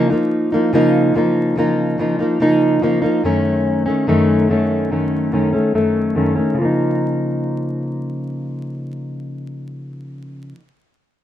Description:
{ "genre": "indie pop", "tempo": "72 BPM", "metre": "4/4", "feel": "straight", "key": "Db major", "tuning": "A4 = 438 Hz", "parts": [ { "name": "fingerpicked plugged-in steel-string acoustic guitar", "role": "solo", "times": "0.0-10.6 s", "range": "Gb2 to Eb4", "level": "-16 LUFS", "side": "equal", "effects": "wide subtle chorus, vibrato effect, low-pass filter" } ], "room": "light reverb", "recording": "rough home demo mix, vinyl crackle", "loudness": "-15 LUFS", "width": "side -11 dB against mid", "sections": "0.0-6.6 A section; 6.6-9.9 B section", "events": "filter sweep on steel-string acoustic guitar 0.0-6.6", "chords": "0.0 Db69; 3.2 Gbm6; 6.6 Db69" }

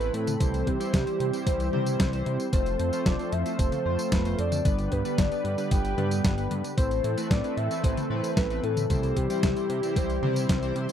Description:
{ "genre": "italo disco", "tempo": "113 BPM", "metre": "4/4", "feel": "straight", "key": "unclear", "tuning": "A4 = 440 Hz", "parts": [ { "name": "soft octave-layered synth lead", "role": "melody", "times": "0.0-10.8 s", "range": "G4 to G5", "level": "-31 LUFS", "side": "left 1 dB", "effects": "chorus, phaser, tape echo" }, { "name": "warm analog pad", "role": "sustained chords", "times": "0.0-10.9 s", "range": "C3 to B5", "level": "-33 LUFS", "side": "right 1 dB", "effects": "chorus" }, { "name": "chorused polysynth", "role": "stabs", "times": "0.0-10.9 s", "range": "G3 to C5", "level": "-33 LUFS", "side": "left 1 dB", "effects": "none" }, { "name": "fat analog bass", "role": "bass", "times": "0.0-10.9 s", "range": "F1 to C3", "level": "-30 LUFS", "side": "equal", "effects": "none" }, { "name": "clean 12-bit digital drum machine", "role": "drums", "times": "0.0-10.9 s", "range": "hi-hat, snare drum, tambourine, toms", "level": "-31 LUFS", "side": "left 1 dB", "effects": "none" }, { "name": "electronic kick drum", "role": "drums", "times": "0.4-10.6 s", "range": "none", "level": "-27 LUFS", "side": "equal", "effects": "none" } ], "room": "little or no reverb", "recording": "dry, close 1970s-style studio recording", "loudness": "-24 LUFS", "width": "side -9 dB against mid", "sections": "0.0-10.9 A section", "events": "none", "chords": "0.4 C; 2.5 F; 4.7 G; 6.8 Amadd9; 8.9 C" }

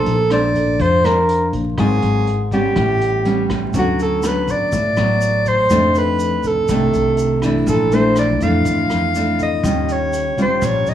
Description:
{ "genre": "bossa nova", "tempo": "122 BPM", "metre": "4/4", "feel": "straight", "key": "unclear", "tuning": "A4 = 439 Hz", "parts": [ { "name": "breathy soprano saxophone", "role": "melody", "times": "0.0-10.9 s", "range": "F#4 to F5", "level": "-18 LUFS", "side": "right 1 dB", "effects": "plate reverb" }, { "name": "nylon-string guitar", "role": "accompaniment", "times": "0.0-10.9 s", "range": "F2 to C5", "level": "-18 LUFS", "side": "left 1 dB", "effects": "plate reverb" }, { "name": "upright bass", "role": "bass", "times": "0.0-10.9 s", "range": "Ab1 to F2", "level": "-22 LUFS", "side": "equal", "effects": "none" }, { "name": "vintage brush drum kit", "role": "drums", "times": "0.1-10.9 s", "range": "hi-hat, kick drum, rim click", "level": "-29 LUFS", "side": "equal", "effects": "vintage 12-bit sampler grit" }, { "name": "tube shaker", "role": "percussion", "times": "3.7-10.9 s", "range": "none", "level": "-37 LUFS", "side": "right 5 dB", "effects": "none" } ], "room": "moderate studio reverb, RT60 0.6 s", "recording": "vinyl crackle, small room ambience", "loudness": "-14 LUFS", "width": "side -10 dB against mid", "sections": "0.0-3.7 A section; 3.7-10.9 B section", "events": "none", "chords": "0.0 Bbmaj9; 1.8 Ab6; 2.8 A9; 3.7 D6; 5.7 F6; 7.7 Bbmaj7#11; 9.6 Eb9" }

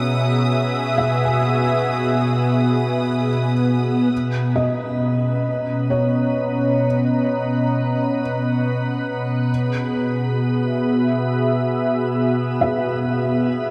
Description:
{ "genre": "ambient", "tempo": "free time", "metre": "none", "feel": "none", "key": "B major", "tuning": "A4 = 440 Hz", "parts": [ { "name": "warm analog pad", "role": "sustained chords", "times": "0.0-13.7 s", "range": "B2 to A#5", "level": "-21 LUFS", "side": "equal", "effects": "chorus, shimmer reverb" }, { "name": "felt-muted upright piano", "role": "arpeggios", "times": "0.0-13.7 s", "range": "C#5 to G#5", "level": "-29 LUFS", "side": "equal", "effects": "tape echo, shimmer reverb" }, { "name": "organ-like drone", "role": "drone", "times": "0.0-13.7 s", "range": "B3 to B4", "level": "-30 LUFS", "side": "equal", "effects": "ensemble chorus, built-in reverb" }, { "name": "warm symphonic violin section", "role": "texture", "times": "0.0-4.1 s", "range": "D#6", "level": "-36 LUFS", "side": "equal", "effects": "shimmer reverb" } ], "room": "wet cathedral reverb, RT60 6.2 s", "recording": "none", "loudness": "-20 LUFS", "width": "mono", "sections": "0.0-4.1 A section; 4.1-13.7 B section", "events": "filter sweep on analog synth pad 4.1-13.7", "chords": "0.0 Eadd9/B; 4.1 Bmaj9; 9.5 Eadd9/B" }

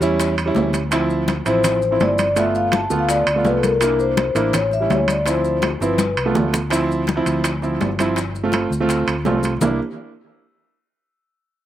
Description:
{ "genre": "Afro-Cuban jazz", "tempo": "166 BPM", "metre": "4/4", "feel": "straight", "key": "C major", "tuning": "A4 = 438 Hz", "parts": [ { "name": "warm concert grand piano", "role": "accompaniment", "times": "0.0-9.8 s", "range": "F3 to F4", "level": "-21 LUFS", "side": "right 3 dB", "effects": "none" }, { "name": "fingered electric bass", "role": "bass", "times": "0.0-9.8 s", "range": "G1 to E2", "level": "-25 LUFS", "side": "left 1 dB", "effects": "none" }, { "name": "congas", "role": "percussion", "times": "0.0-9.7 s", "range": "none", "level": "-25 LUFS", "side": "left 3 dB", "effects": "none" }, { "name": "maracas", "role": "percussion", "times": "0.0-9.7 s", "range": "none", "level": "-32 LUFS", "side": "left 7 dB", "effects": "none" }, { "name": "bongos", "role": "percussion", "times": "0.2-9.7 s", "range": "none", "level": "-31 LUFS", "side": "left 10 dB", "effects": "slapback echo" }, { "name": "timbales", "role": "percussion", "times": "0.2-9.7 s", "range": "none", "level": "-25 LUFS", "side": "right 4 dB", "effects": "slapback echo" }, { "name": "vibraphone with soft mallets", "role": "melody", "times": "1.5-6.3 s", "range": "A4 to A5", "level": "-19 LUFS", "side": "left 3 dB", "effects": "slapback echo" } ], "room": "little or no reverb", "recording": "recorded outdoors, with no room sound", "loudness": "-16 LUFS", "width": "side -12 dB against mid", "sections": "0.0-6.7 A section; 6.7-9.6 B section; 9.6-11.1 C section", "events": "drum fill 6.0-6.7", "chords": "0.0 A7 (rootless); 0.9 Dm7; 2.4 G9; 3.8 C9; 4.5 A7; 5.3 Dm7; 6.0 G9; 6.7 Dm9; 8.2 G7sus4; 9.6 C9" }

